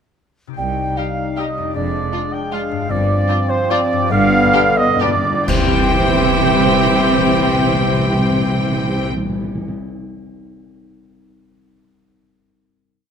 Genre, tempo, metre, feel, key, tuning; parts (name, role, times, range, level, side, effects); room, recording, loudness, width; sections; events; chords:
classical, orchestral ballroom waltz; 120-167 BPM; 3/4; rubato; A4 = 440 Hz
concert harp; arpeggios; 0.5-9.9 s; F2 to G5; -28 LUFS; left 11 dB
concert flute; second line; 0.6-9.1 s; C5 to G5; -26 LUFS; equal
dark clarinet; second line; 0.6-9.1 s; B3 to Eb4; -27 LUFS; left 1 dB
warm oboe; second line; 0.6-9.1 s; C5 to G5; -25 LUFS; right 2 dB
warm bassoon; accompaniment; 0.6-9.1 s; D3 to Ab3; -26 LUFS; right 2 dB
mellow French horn section; sustained chords; 0.6-9.1 s; D3 to Eb4; -25 LUFS; left 4 dB
mellow trumpet; stabs; 0.6-9.1 s; G4 to G5; -22 LUFS; right 4 dB
rich studio cello section; bass; 0.6-9.1 s; C2 to C3; -24 LUFS; equal
rich studio double bass section; bass; 0.6-9.1 s; F1 to C2; -25 LUFS; right 4 dB
rich studio violin section; melody; 1.0-9.1 s; F4 to G5; -24 LUFS; left 2 dB
rich studio violin section; second line; 1.0-9.1 s; D4 to E4; -29 LUFS; left 4 dB
rich studio viola section; accompaniment; 1.0-9.1 s; G3 to C4; -26 LUFS; right 1 dB
cymbal swell, clash cymbals and concert bass drum; percussion; 2.9-6.4 s; -25 LUFS; equal
timpani; percussion; 4.1-9.7 s; G2 to C3; -21 LUFS; left 2 dB
light reverb; close, detailed microphones; -14 LUFS; side -7 dB against mid
0.6-5.5 A section; 5.5-8.3 final chord
slowing down 2.3-5.5; timpani fill 4.1-5.5; band accent 5.5-5.9
0.6 Cm; 1.7 Ddim/F; 2.9 G7sus4; 4.1 G7; 5.5 C